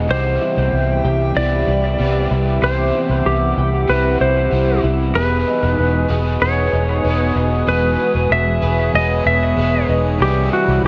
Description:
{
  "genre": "dream pop",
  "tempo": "95 BPM",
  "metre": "4/4",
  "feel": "straight",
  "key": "unclear",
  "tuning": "A4 = 441 Hz",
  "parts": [
    { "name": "crunchy overdriven guitar", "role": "accompaniment", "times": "0.0-10.9 s", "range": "C3 to B4", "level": "-26 LUFS", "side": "equal", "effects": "harmonic tremolo, analog chorus" },
    { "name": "warbly tape-like pad", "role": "sustained chords", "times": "0.0-10.9 s", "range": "G4 to E6", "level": "-27 LUFS", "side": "equal", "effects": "chorus, built-in reverb" },
    { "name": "clean electric guitar", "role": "arpeggios", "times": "0.0-10.9 s", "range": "G3 to G#4", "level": "-27 LUFS", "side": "equal", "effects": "analog chorus, digital delay" },
    { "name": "vintage muted fingered electric bass", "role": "bass", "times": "0.0-10.9 s", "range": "E1 to C2", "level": "-21 LUFS", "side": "equal", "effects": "none" },
    { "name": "clean lap steel guitar", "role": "melody", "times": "0.1-10.8 s", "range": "F#4 to E5", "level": "-22 LUFS", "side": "equal", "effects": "digital delay" },
    { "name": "drifting glass-harmonics texture", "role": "texture", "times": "2.8-10.5 s", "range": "G#3 to F#5", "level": "-32 LUFS", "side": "equal", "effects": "chorus, built-in reverb, digital delay" }
  ],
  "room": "moderate plate reverb, RT60 2.5 s",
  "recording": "none",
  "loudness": "-17 LUFS",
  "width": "mono",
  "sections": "0.0-10.9 A section",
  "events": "none",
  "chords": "0.1 Cmaj7; 5.1 Emaj7; 10.2 Cmaj7",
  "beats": "| 0.09 0.73 1.36 1.99 | 2.62 3.25 3.88 4.51 | 5.15 5.78 6.41 7.04 | 7.67 8.30 8.94 9.57 | 10.20 10.83"
}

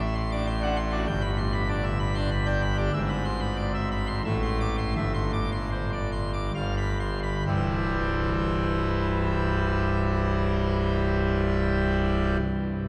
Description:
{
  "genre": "classical, organ toccata",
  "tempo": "62-98 BPM",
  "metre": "3/4",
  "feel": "straight",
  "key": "C major",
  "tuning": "A4 = 440 Hz",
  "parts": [
    { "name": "pipe organ, full organ", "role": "solo", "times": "0.0-12.4 s", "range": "C1 to D6", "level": "-27 LUFS", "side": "equal", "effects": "none" }
  ],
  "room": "wet cathedral reverb, RT60 5.7 s",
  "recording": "heard from further back in the room",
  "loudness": "-27 LUFS",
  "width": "mono",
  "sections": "0.0-7.5 A section; 7.5-12.9 B section",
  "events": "slowing down 2.0-7.5",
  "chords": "0.0 D7/A; 1.1 G; 2.9 E7/G#; 4.3 Am; 5.0 C/G; 6.5 G7; 7.5 C",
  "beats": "0.48 | 1.10 1.71 2.33 | 2.95 3.59 4.26 | 4.96 5.72 6.55 | 7.46 8.41 9.36 | 10.31 11.26 12.22"
}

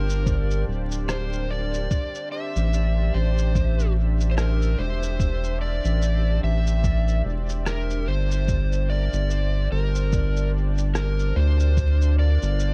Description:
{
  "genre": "ambient dub",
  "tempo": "73 BPM",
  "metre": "4/4",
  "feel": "swing 58% on 16ths",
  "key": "G dorian",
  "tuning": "A4 = 440 Hz",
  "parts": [
    { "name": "overdriven slide guitar", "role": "melody", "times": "0.0-12.7 s", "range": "Bb4 to E5", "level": "-33 LUFS", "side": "equal", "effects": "dub echo" },
    { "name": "deep dark ambient pad", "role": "sustained chords", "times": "0.0-12.7 s", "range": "D4 to F5", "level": "-37 LUFS", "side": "equal", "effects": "chorus, built-in reverb" },
    { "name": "round analog bass", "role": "bass", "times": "0.0-12.7 s", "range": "D1 to D2", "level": "-24 LUFS", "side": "equal", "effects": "none" },
    { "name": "electronic shaker and rim click", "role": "drums", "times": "0.1-12.7 s", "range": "none", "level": "-37 LUFS", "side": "equal", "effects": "small room ambience, dub echo" },
    { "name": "electronic kick drum", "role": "drums", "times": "0.3-12.0 s", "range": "none", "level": "-27 LUFS", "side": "equal", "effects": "small room ambience" }
  ],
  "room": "digital ambience",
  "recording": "vinyl crackle",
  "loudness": "-23 LUFS",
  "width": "mono",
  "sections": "0.0-12.7 A section",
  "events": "none",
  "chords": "0.0 Gm7; 1.9 Am7; 8.5 Gm7",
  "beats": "0.27 1.09 | 1.91 2.73 3.55 4.38 | 5.20 6.02 6.84 7.66 | 8.49 9.31 10.13 10.95 | 11.77 12.60"
}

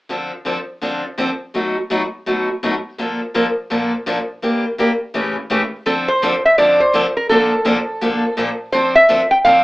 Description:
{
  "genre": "jazz",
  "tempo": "167 BPM",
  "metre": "4/4",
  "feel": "swing 62% on 8ths",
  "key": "D minor",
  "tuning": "A4 = 441 Hz",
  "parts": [
    { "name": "picked steel-string acoustic guitar", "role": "accompaniment", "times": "0.1-9.6 s", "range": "A2 to A4", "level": "-18 LUFS", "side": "equal", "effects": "none" },
    { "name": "lap resonator guitar", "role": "melody", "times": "5.9-9.6 s", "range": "A4 to G5", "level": "-13 LUFS", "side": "equal", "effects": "none" }
  ],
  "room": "wet small room ambience, RT60 0.5 s",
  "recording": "AM radio sound",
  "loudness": "-15 LUFS",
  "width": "side -19 dB against mid",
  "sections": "0.1-5.9 A section; 5.9-9.6 B section",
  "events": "none",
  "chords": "0.1 Dm7; 1.5 B7; 3.0 Bbmaj7; 4.4 Em7b5; 5.1 A7; 5.9 Dm7; 7.3 Bbmaj7; 8.7 Dm7",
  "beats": "| 0.09 0.45 0.81 1.17 | 1.53 1.90 2.25 2.62 | 2.98 3.33 3.69 4.05 | 4.42 4.78 5.13 5.49 | 5.85 6.21 6.57 6.93 | 7.29 7.65 8.01 8.37 | 8.72 9.08 9.44"
}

